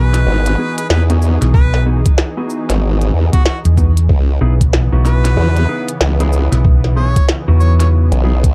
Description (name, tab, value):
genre	glitch hop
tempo	94 BPM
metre	4/4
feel	swing 62% on 16ths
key	C# minor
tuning	A4 = 440 Hz
part	clear harmonica	melody	0.0-7.9 s	F#4 to C#5	-26 LUFS	equal	dub echo
part	warm analog pad	sustained chords	0.0-8.5 s	C#3 to G#4	-28 LUFS	equal	chorus, sidechain pumping
part	mellow electric guitar	stabs	0.0-8.4 s	B3 to B4	-25 LUFS	equal	vintage 12-bit sampler grit, sidechain pumping
part	hollow-body short-scale fingered electric bass	bass	0.0-8.1 s	B1 to E2	-14 LUFS	equal	none
part	glitchy drum kit	drums	0.1-8.5 s	hi-hat, shaker, snare drum	-23 LUFS	equal	overdrive
part	formant-sweep wobble bass	bass	0.3-8.5 s	G#1 to E2	-15 LUFS	equal	chorus, tube saturation
part	electronic kick drum	drums	1.5-8.5 s	none	-14 LUFS	equal	none
room	little or no reverb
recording	dark, warm production, lossy compression artefacts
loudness	-13 LUFS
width	mono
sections	0.0-8.5 A section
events	none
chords	0.0 Emaj7; 4.1 C#m7